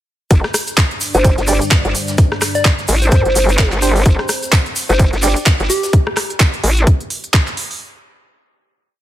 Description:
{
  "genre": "bass house",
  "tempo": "128 BPM",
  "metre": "4/4",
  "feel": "swing 58% on 16ths",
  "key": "unclear",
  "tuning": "A4 = 440 Hz",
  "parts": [
    { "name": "dark analog pad", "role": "sustained chords", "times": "1.0-5.9 s", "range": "G3 to D5", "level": "-26 LUFS", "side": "left 1 dB", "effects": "chorus, phaser, sidechain pumping" },
    { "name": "vowel-sweep wobble bass", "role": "bass", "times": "0.3-6.9 s", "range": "G1 to G2", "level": "-15 LUFS", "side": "equal", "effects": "chorus, sidechain pumping" },
    { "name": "electronic kick drum", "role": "drums", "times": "0.3-7.4 s", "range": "none", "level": "-13 LUFS", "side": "equal", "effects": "none" },
    { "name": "garage drum kit", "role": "drums", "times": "0.3-7.8 s", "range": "handclaps, hi-hat, rim click", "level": "-19 LUFS", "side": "right 1 dB", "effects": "none" },
    { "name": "vintage brush drum kit", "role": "drums", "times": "0.3-5.9 s", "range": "hi-hat, snare drum", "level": "-31 LUFS", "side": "right 2 dB", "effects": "none" },
    { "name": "tube shaker", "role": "percussion", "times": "0.3-5.9 s", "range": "none", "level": "-24 LUFS", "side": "left 2 dB", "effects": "none" },
    { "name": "soft struck synth lead", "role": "melody", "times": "1.1-5.9 s", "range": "G4 to D5", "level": "-21 LUFS", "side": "equal", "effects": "chorus, tape echo" },
    { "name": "percussive organ stab", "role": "stabs", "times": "1.5-5.4 s", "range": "D4 to D5", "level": "-23 LUFS", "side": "right 3 dB", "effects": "chorus, phaser, sidechain pumping, tape echo" }
  ],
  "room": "small room ambience",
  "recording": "none",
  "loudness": "-12 LUFS",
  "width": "side -13 dB against mid",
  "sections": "0.3-7.8 drop",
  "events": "drop 0.3-7.8",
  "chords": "0.3 G5"
}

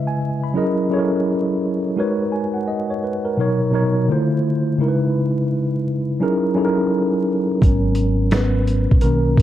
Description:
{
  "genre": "lo-fi hip hop",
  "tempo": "85 BPM",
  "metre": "4/4",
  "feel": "swing 62% on 16ths",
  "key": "G# minor",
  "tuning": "A4 = 443 Hz",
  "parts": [
    { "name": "mellow tine electric piano", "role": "accompaniment", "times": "0.0-9.4 s", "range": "B2 to B5", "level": "-18 LUFS", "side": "equal", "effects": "medium stereo tremolo" },
    { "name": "deep dub fingered electric bass", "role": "bass", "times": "7.6-9.4 s", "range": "G#1 to B1", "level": "-19 LUFS", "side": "equal", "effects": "none" },
    { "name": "dusty soul sampler-style drum kit", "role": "drums", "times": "7.6-9.4 s", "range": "finger snaps, hi-hat, kick drum, snare drum", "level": "-16 LUFS", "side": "equal", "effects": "none" }
  ],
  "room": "light reverb",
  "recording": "dark, warm production, vinyl crackle",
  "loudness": "-17 LUFS",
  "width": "side -12 dB against mid",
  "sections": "0.0-7.6 A section; 7.6-9.4 B section",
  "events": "tine electric piano solo 7.6-9.4",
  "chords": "0.0 C#m7; 0.6 F#13; 2.0 G#m11; 3.4 Bmaj9; 4.1 Dm7; 4.8 C#m7; 6.2 F#13; 7.6 G#m11"
}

